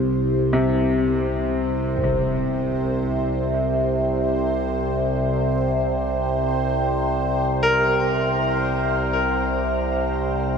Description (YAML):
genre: dark ambient drone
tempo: free time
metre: none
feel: none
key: unclear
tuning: A4 = 440 Hz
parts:
  - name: overtone-sweeping drone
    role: drone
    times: 0.0-10.6 s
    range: C2 to C3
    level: -21 LUFS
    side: equal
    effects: chorus, built-in reverb
  - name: bubbling stepped-filter texture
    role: texture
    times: 0.0-10.6 s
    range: C5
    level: -33 LUFS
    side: right 2 dB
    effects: chorus, built-in reverb, shimmer reverb
  - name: bright concert grand piano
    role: arpeggios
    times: 0.5-10.6 s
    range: C3 to Bb4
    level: -25 LUFS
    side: left 2 dB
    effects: ping-pong delay, shimmer reverb
  - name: impact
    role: percussion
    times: 2.0-2.2 s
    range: none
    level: -33 LUFS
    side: right 1 dB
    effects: low-pass filter on sfx
room: wet huge ambient reverb, RT60 7.4 s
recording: none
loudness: -19 LUFS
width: side -6 dB against mid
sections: 0.0-10.6 A section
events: fade-in on synth texture 0.0-10.6; fade-in on impacts and reversed cymbals 0.0-10.6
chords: 0.0 Bbsus2/C